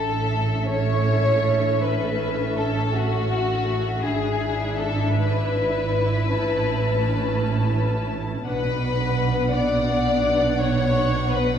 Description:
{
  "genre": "classical, slow romantic movement for string orchestra",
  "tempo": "55 BPM (dotted quarters)",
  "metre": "12/8",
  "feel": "rubato",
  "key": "A major",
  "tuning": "A4 = 440 Hz",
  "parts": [
    { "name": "warm studio violin section", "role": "melody", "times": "0.0-11.6 s", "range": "E5 to A5", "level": "-32 LUFS", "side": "left 4 dB", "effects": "none" },
    { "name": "warm studio violin section", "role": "second line", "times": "0.0-11.6 s", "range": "F#4 to D5", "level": "-24 LUFS", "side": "left 2 dB", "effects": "none" },
    { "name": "warm studio viola section", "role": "accompaniment", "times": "0.0-11.6 s", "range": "B3 to A4", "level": "-28 LUFS", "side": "right 1 dB", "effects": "none" },
    { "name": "rich studio cello section", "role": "bass", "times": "0.0-11.6 s", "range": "G#2 to B2", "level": "-28 LUFS", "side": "right 3 dB", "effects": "none" },
    { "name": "warm studio double bass section", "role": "bass", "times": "0.0-11.6 s", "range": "G#1 to B1", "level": "-26 LUFS", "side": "right 3 dB", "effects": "none" }
  ],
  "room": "wet recital hall reverb, RT60 1.5 s",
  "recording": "heard from further back in the room",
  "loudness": "-20 LUFS",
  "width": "side -8 dB against mid",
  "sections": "0.0-11.6 A section",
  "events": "none",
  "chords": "0.0 A; 4.0 E7/G#; 6.3 A; 8.5 Bm"
}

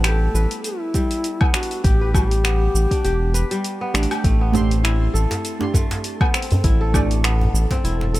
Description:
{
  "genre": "organic downtempo",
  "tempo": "100 BPM",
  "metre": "4/4",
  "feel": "swing 56% on 16ths",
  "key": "A minor",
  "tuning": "A4 = 439 Hz",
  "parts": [
    { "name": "breathy bass bansuri", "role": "melody", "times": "0.0-3.9 s", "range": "E4 to B4", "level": "-26 LUFS", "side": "left 2 dB", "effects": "digital delay" },
    { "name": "deep mellow chord stab", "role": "accompaniment", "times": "0.0-7.1 s", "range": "A3 to C6", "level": "-26 LUFS", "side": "right 4 dB", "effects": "chorus, sidechain pumping, digital delay" },
    { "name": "kora", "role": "arpeggios", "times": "0.0-8.2 s", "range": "G3 to B4", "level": "-27 LUFS", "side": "left 1 dB", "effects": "digital delay" },
    { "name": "round analog bass", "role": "bass", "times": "0.0-8.2 s", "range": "E1 to A1", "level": "-19 LUFS", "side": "equal", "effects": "sidechain pumping" },
    { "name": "deep house drum kit", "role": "drums", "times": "0.0-8.2 s", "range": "finger snaps, hi-hat, shaker, woodblock", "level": "-26 LUFS", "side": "left 1 dB", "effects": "overdrive" },
    { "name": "electronic kick drum", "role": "drums", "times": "0.9-7.8 s", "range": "none", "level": "-19 LUFS", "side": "equal", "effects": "overdrive" },
    { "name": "wind-like tuned noise texture", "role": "texture", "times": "5.0-8.2 s", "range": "A4", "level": "-36 LUFS", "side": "right 1 dB", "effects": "built-in reverb" },
    { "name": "djembe", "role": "percussion", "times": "4.5-8.1 s", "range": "none", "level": "-24 LUFS", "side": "equal", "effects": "none" }
  ],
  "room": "digital ambience",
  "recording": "none",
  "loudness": "-17 LUFS",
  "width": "side -16 dB against mid",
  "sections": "0.0-8.2 A section",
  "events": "none",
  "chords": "0.0 G/A; 4.2 Amadd9"
}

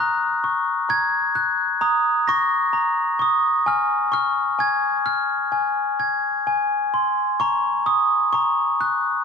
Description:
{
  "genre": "children's music, lullaby",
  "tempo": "65 BPM",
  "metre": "4/4",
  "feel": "rubato",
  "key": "unclear",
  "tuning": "A4 = 440 Hz",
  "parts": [
    { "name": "glockenspiel with rubber mallets", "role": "solo", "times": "0.0-9.2 s", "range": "Ab5 to Bb6", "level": "-18 LUFS", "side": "left 1 dB", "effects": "none" }
  ],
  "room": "moderate concert hall reverb, RT60 2.0 s",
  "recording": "dark, warm production, nothing above 10.8 kHz",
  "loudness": "-18 LUFS",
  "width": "side -5 dB against mid",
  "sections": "0.0-9.2 A section",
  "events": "none",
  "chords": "0.0 Gb/Bb; 3.7 Db/Ab; 5.5 Ab; 7.4 Gb"
}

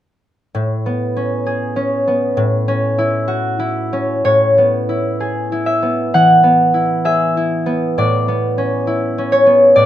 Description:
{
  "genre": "classical, solo harp piece",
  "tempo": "65 BPM",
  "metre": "4/4",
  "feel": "rubato",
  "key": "A major",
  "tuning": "A4 = 440 Hz",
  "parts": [
    { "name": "concert harp", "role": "solo", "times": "0.5-9.9 s", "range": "A2 to F#5", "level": "-13 LUFS", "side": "equal", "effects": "none" }
  ],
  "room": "light reverb",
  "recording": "none",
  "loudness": "-13 LUFS",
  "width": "side -12 dB against mid",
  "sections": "0.5-4.3 A section; 4.3-9.9 B section",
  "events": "none",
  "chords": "0.5 Amaj9; 2.4 F#m7/A; 4.3 Amaj9; 8.0 Bm11/A"
}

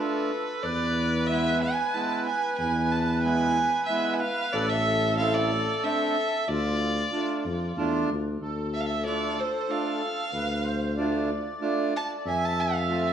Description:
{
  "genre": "klezmer",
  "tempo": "93 BPM",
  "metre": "3/4",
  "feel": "straight",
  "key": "D dorian sharp4",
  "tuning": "A4 = 440 Hz",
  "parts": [
    { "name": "clear violin", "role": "melody", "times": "0.0-13.1 s", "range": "B4 to A5", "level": "-28 LUFS", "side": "right 1 dB", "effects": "none" },
    { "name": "accordion", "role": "second line", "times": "0.0-13.1 s", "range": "F4 to E5", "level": "-31 LUFS", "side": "right 1 dB", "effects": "light tremolo tuning" },
    { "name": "accordion", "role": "accompaniment", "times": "0.0-13.1 s", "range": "G#3 to F4", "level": "-30 LUFS", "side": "right 3 dB", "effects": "none" },
    { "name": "mellow tuba", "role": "bass", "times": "0.6-13.1 s", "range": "A1 to F2", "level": "-28 LUFS", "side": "left 1 dB", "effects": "none" }
  ],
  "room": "moderate recital hall reverb, RT60 1.7 s",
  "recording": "worn, warbling old tape, cassette tape, warbly pitch drift",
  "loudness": "-24 LUFS",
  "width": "side -9 dB against mid",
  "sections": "0.0-8.4 A section; 8.4-13.1 B section",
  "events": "violin solo 8.4-13.1",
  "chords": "0.0 Dm; 0.6 E; 4.5 Am; 6.5 Dm; 12.3 F"
}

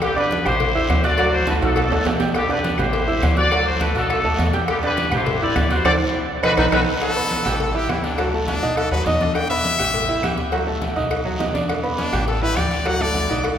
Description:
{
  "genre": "latin, salsa",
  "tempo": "206 BPM",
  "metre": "4/4",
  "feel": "straight",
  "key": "E minor",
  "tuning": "A4 = 440 Hz",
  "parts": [
    { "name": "bright trumpet section", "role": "melody", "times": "0.0-6.8 s", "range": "B3 to D5", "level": "-22 LUFS", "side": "left 2 dB", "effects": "none" },
    { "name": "clear concert grand piano", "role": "accompaniment", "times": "0.0-13.5 s", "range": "F#3 to G6", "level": "-24 LUFS", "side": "right 2 dB", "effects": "none" },
    { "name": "upright bass", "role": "bass", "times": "0.0-13.6 s", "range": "A1 to E2", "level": "-25 LUFS", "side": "equal", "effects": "none" },
    { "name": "agogo bells and timbales", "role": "percussion", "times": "0.0-13.6 s", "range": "none", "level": "-26 LUFS", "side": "right 3 dB", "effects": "none" },
    { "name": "claves", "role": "percussion", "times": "0.0-13.6 s", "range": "none", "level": "-36 LUFS", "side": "left 1 dB", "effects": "none" },
    { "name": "congas", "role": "percussion", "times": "0.0-13.6 s", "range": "none", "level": "-29 LUFS", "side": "left 1 dB", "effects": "none" },
    { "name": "cowbell", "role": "percussion", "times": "0.0-13.6 s", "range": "none", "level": "-29 LUFS", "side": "left 4 dB", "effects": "none" },
    { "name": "guiro", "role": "percussion", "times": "0.0-13.6 s", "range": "none", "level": "-35 LUFS", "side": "right 2 dB", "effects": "none" },
    { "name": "clear baritone saxophone", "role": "second line", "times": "6.6-7.0 s", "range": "B3 to D#4", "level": "-31 LUFS", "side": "left 1 dB", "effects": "none" },
    { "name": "brilliant trumpet", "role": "melody", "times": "7.0-13.4 s", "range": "D4 to G5", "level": "-24 LUFS", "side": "left 2 dB", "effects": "none" }
  ],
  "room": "wet cathedral reverb, RT60 4.5 s",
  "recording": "recorded in a church or concert hall",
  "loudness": "-17 LUFS",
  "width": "side -9 dB against mid",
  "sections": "0.0-7.0 A section; 7.0-13.6 B section",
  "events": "drum fill 1.5-2.4, 6.1-7.0; band accent 5.9-7.0; trumpet solo 7.0-13.6",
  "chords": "0.0 Em7; 0.6 Am7; 1.2 D; 1.8 B7; 2.4 Em7; 2.9 Am7; 3.5 D; 4.1 B7; 4.7 Em7; 5.3 Asus2; 5.9 D7; 6.4 B7; 7.0 Gadd9; 7.6 A5; 8.2 D; 8.8 B; 9.4 Em7; 9.9 A5; 10.5 D; 11.1 B; 11.7 Em7; 12.3 A5; 12.9 D"
}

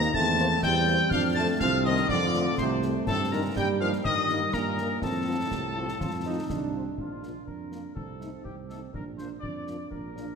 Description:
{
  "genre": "military-style march for wind band",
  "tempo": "123 BPM",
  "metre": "2/4",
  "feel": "straight",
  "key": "Bb major",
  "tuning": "A4 = 440 Hz",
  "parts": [
    { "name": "dark trumpet section", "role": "melody", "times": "0.0-10.4 s", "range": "F4 to Bb5", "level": "-31 LUFS", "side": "left 3 dB", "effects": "none" },
    { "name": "bright piccolo", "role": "second line", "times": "0.0-6.5 s", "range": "A5 to Bb6", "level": "-32 LUFS", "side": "left 4 dB", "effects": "none" },
    { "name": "warm euphonium", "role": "second line", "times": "0.0-10.4 s", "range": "A2 to D4", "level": "-34 LUFS", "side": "right 3 dB", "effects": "none" },
    { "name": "warm trombone section", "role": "sustained chords", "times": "0.0-6.9 s", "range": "G3 to F4", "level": "-34 LUFS", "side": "right 2 dB", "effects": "none" },
    { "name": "dark tuba", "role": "bass", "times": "0.0-10.3 s", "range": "Bb1 to G2", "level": "-31 LUFS", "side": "right 2 dB", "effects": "none" },
    { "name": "concert snare drum, concert bass drum and clash cymbals", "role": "drums", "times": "0.0-10.3 s", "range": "none", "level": "-37 LUFS", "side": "left 1 dB", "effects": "none" },
    { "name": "mellow French horn section", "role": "accompaniment", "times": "0.4-10.2 s", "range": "F3 to C5", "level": "-38 LUFS", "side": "left 5 dB", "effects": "none" }
  ],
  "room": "wet concert hall reverb, RT60 2.3 s",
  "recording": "none",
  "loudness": "-24 LUFS",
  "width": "side -6 dB against mid",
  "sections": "0.0-7.0 A section; 7.0-10.4 B section",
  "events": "none",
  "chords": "0.1 C7/E; 1.1 F; 3.1 Eb/G; 5.0 F; 7.0 Bb; 8.0 Adim/C; 8.9 Bb"
}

